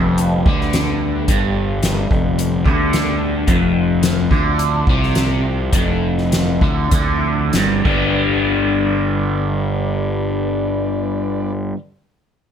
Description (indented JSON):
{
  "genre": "psychedelic rock",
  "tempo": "92-110 BPM",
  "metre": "4/4",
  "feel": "straight",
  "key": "G mixolydian",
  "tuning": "A4 = 440 Hz",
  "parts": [
    { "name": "combo organ", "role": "sustained chords", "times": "0.0-11.5 s", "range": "D3 to D5", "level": "-28 LUFS", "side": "right 5 dB", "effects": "none" },
    { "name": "crunchy overdriven guitar", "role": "riff", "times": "0.0-11.8 s", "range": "F2 to G4", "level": "-18 LUFS", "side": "left 2 dB", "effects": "phaser" },
    { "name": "fuzz fingered electric bass", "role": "bass", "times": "0.0-11.7 s", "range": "F1 to D2", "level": "-21 LUFS", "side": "equal", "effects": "overdrive" },
    { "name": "soft-mallet drum kit", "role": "drums", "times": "0.2-8.0 s", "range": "crash cymbal, hi-hat, kick drum, snare drum", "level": "-20 LUFS", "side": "equal", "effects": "none" }
  ],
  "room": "light reverb",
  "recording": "none",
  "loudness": "-15 LUFS",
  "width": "side -8 dB against mid",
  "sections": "0.0-8.2 A section; 8.2-10.8 B section",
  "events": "slowing down 3.5-8.2",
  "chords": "0.0 G; 3.5 F5; 7.9 G",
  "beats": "0.19 0.74 | 1.29 1.84 2.39 2.94 | 3.49 4.04 4.59 5.16 | 5.73 6.32 6.92 7.54 | 8.18 8.83 9.48 10.13"
}